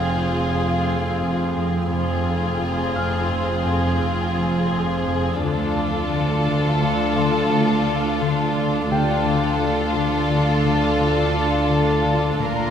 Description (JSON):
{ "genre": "cinematic, suspense film score", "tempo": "86 BPM", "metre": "5/4", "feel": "straight", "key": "unclear", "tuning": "A4 = 439 Hz", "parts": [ { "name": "rich studio violin section", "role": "melody", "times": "0.0-12.7 s", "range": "Ab4 to Bb4", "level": "-26 LUFS", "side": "left 1 dB", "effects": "none" }, { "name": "warm studio violin section", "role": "second line", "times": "0.0-12.7 s", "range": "F4", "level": "-26 LUFS", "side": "left 2 dB", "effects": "none" }, { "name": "warm studio viola section", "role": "accompaniment", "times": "0.0-12.7 s", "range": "C4 to D4", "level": "-26 LUFS", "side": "equal", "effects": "none" }, { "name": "concert harp", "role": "riff", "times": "0.0-12.7 s", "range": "F2 to D4", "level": "-26 LUFS", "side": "left 5 dB", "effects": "none" }, { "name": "dark chamber cello section", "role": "bass", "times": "0.0-12.7 s", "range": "D2 to Bb2", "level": "-26 LUFS", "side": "right 3 dB", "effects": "none" }, { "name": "dark studio double bass section", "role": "bass", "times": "0.0-12.7 s", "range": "F1 to D2", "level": "-28 LUFS", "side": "right 4 dB", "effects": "none" }, { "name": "metallic inharmonic drone", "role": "drone", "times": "0.0-12.7 s", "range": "Bb1 to F2", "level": "-30 LUFS", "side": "right 1 dB", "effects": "chorus, built-in reverb" }, { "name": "warm concert grand piano", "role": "texture", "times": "0.0-12.4 s", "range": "G4 to F6", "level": "-33 LUFS", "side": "equal", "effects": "none" } ], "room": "wet concert hall reverb, RT60 2.1 s", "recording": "none", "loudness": "-18 LUFS", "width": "side -8 dB against mid", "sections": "0.0-12.7 A section", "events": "none", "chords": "0.0 Fm; 5.4 Dm", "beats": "0.53 1.23 | 1.92 2.62 3.32 4.02 4.71 | 5.41 6.11 6.81 7.51 8.20 | 8.90 9.60 10.30 10.99 11.69 | 12.39" }